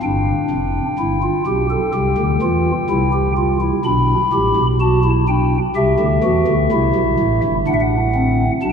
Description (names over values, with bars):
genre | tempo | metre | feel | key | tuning
classical, baroque-style 3-part fugue for pipe organ | 63 BPM | 4/4 | straight | unclear | A4 = 442 Hz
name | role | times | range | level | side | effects
pipe organ, stopped flute | solo | 0.0-8.7 s | F1 to B5 | -14 LUFS | equal | none
room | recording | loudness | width
wet cathedral reverb, RT60 5.8 s | in a vast, echoing space | -14 LUFS | side -6 dB against mid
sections
0.0-8.7 A section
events
none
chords
0.0 G7; 1.9 C; 3.9 G; 5.8 Am7/C; 7.7 D7/A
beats
| 0.02 0.98 1.94 2.89 | 3.85 4.80 5.76 6.71 | 7.67 8.63